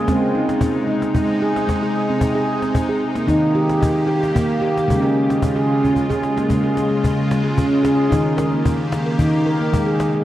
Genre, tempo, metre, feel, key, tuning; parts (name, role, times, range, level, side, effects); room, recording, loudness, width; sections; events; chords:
world meditative, meditative tuned percussion; 112 BPM; 3/4; swing 54% on 16ths; Db lydian; A4 = 440 Hz
evolving wavetable pad; sustained chords; 0.0-10.2 s; C3 to G4; -25 LUFS; left 1 dB; ensemble chorus, built-in reverb, shimmer reverb
handpan; arpeggios; 0.0-10.2 s; Db3 to Bb4; -17 LUFS; equal; shimmer reverb
cajon; percussion; 0.1-10.1 s; -24 LUFS; left 1 dB
wet lush hall reverb, RT60 1.8 s, studio reverb; worn, warbling old tape, cassette tape, warbly pitch drift; -16 LUFS; side -13 dB against mid
0.0-6.5 A section; 6.5-10.2 B section
drum fill 5.8-6.5
0.1 Ab; 3.3 Eb; 4.9 Db; 8.1 Eb; 9.7 Ab